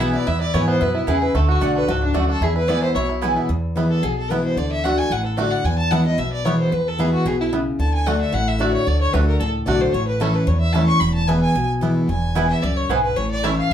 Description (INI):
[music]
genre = bluegrass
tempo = 223 BPM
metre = 4/4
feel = straight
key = E mixolydian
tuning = A4 = 439 Hz
[part]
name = bluegrass banjo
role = melody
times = 0.0-13.5 s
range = A3 to F#4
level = -27 LUFS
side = right 3 dB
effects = slapback echo
[part]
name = clear fiddle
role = melody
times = 0.0-13.7 s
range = D4 to C#6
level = -23 LUFS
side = left 1 dB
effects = slapback echo
[part]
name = picked steel-string acoustic guitar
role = accompaniment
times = 0.0-13.7 s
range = E2 to F#4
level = -21 LUFS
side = left 1 dB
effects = none
[part]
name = mandolin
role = stabs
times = 0.0-3.3, 12.4-13.5 s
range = A3 to A5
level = -24 LUFS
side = right 4 dB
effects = none
[part]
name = upright bass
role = bass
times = 0.0-13.7 s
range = E1 to G#2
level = -23 LUFS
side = equal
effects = none
[sound]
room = wet studio reverb, RT60 0.5 s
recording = heard from further back in the room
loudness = -17 LUFS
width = side -9 dB against mid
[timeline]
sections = 0.0-3.5 A section; 3.5-13.7 B section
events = fiddle solo 3.5-13.7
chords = 0.0 E; 1.3 D; 2.4 E; 4.6 D; 5.6 E; 7.8 D; 9.9 A; 11.0 E; 13.2 A